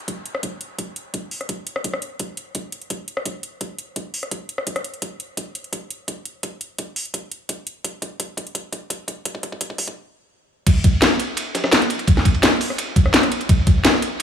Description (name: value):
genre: drum and bass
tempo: 170 BPM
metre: 4/4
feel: straight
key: none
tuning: none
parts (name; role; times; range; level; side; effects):
- garage drum kit; drums; 0.0-14.2 s; crash cymbal, hi-hat, rim click, snare drum; -21 LUFS; left 1 dB; high-pass filter on hats, small room ambience, high-pass filter on snare, high-pass filter on cymbals
- electronic kick drum; drums; 0.1-13.7 s; none; -20 LUFS; equal; high-pass filter on kick, small room ambience
- dusty soul sampler-style drum kit; drums; 10.7-14.2 s; ride cymbal, snare drum; -24 LUFS; equal; high-pass filter on cymbals, small room ambience, high-pass filter on snare
room: light reverb, digital ambience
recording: small room reverb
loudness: -20 LUFS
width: side -8 dB against mid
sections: 0.0-10.7 A section; 10.7-14.2 B section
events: build-up 0.0-10.7; drum fill 5.0-10.0; stop 10.0-10.7; drop 10.7-14.2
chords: none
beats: 0.08 0.43 | 0.79 1.14 1.49 1.84 | 2.20 2.55 2.90 3.26 | 3.61 3.96 4.32 4.67 | 5.02 5.38 5.73 6.08 | 6.43 6.79 7.14 7.49 | 7.84 8.20 8.55 8.90 | 9.26 9.61 9.96 10.32 | 10.67 11.02 11.38 11.73 | 12.08 12.43 12.79 13.14 | 13.49 13.85 14.20